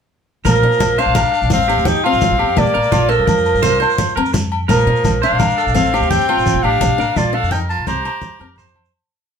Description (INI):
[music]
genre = highlife guitar band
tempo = 113 BPM (dotted quarters)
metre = 12/8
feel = straight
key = Bb major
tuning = A4 = 444 Hz
[part]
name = electric guitar through a small old amp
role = arpeggios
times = 0.4-8.9 s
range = F4 to C5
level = -20 LUFS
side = right 5 dB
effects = none
[part]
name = upright bass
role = bass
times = 0.4-8.9 s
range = A1 to Bb2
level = -20 LUFS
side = right 1 dB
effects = none
[part]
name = warm clarinet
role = melody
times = 0.5-8.7 s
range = Bb4 to Bb5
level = -17 LUFS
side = left 1 dB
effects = none
[part]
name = edgy tenor saxophone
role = second line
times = 0.5-8.7 s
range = F3 to G4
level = -25 LUFS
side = left 4 dB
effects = none
[part]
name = picked old ladder-braced acoustic guitar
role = accompaniment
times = 0.5-8.7 s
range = Bb3 to D4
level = -25 LUFS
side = left 5 dB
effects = none
[part]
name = agogo bells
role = percussion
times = 0.5-8.9 s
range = none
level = -26 LUFS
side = left 4 dB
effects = none
[part]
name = congas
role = percussion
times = 0.5-8.9 s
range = none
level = -21 LUFS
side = left 1 dB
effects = none
[part]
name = shekere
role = percussion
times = 0.5-8.9 s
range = none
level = -25 LUFS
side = right 2 dB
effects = none
[sound]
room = wet studio ambience, RT60 0.5 s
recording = band playing live in one room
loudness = -13 LUFS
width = side -7 dB against mid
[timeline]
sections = 0.5-8.9 A section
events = fade-out 6.8-8.9; drum fill 8.4-8.9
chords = 0.5 Bb; 1.5 Fadd9/A; 2.6 Bbmaj7; 3.6 C9sus4; 4.7 Bbmaj7; 5.8 Fadd9/A; 6.8 Bbmaj7; 7.9 C5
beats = | 0.46 0.98 1.51 2.04 | 2.57 3.10 3.63 4.16 | 4.69 5.22 5.75 6.28 | 6.81 7.34 7.87 8.40